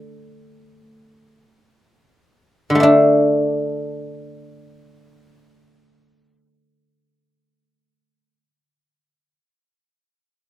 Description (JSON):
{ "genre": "chinese traditional, Chinese solo plucked strings", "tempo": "free time", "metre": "none", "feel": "none", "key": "unclear", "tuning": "A4 = 440 Hz", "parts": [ { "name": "guzheng", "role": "solo", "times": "0.0-9.3 s", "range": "D3 to E4", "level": "-14 LUFS", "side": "left 1 dB", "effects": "none" } ], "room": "moderate small room ambience, RT60 0.5 s", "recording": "rough home demo mix", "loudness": "-14 LUFS", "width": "side -14 dB against mid", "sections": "0.0-2.8 A section; 2.8-8.1 B section", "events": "slowing down 0.0-2.8", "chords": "none" }